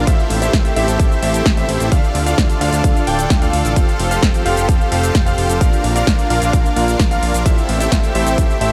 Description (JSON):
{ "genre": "EDM, festival progressive house", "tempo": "130 BPM", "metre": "4/4", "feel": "straight", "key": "unclear", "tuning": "A4 = 439 Hz", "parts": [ { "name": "lush unison pad", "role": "sustained chords", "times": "0.0-8.7 s", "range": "D3 to A4", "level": "-25 LUFS", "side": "equal", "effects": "chorus, sidechain pumping" }, { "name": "clear concert grand piano", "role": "arpeggios", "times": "0.0-8.7 s", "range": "E5 to G5", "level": "-26 LUFS", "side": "equal", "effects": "sidechain pumping, tape echo" }, { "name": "supersaw chords", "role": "riff", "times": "0.0-8.7 s", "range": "D4 to G5", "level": "-24 LUFS", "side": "equal", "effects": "sidechain pumping, tape echo" }, { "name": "fat analog bass", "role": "bass", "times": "0.0-8.7 s", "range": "D1 to D2", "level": "-22 LUFS", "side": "equal", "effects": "sidechain pumping" }, { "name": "big-room dance drum kit", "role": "drums", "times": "0.1-8.7 s", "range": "hi-hat, shaker, snare drum", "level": "-26 LUFS", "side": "equal", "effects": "none" }, { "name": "electronic kick drum", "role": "drums", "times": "0.1-8.5 s", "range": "none", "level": "-17 LUFS", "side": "equal", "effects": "none" } ], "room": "light reverb, digital ambience", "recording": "none", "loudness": "-15 LUFS", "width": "mono", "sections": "0.0-8.7 A section", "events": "none", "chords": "0.1 Am7; 1.9 Dm; 3.8 Fadd9; 5.6 Bb; 7.5 Am7", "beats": "| 0.07 0.53 0.99 1.46 | 1.92 2.38 2.84 3.30 | 3.76 4.23 4.69 5.15 | 5.61 6.07 6.53 7.00 | 7.46 7.92 8.38" }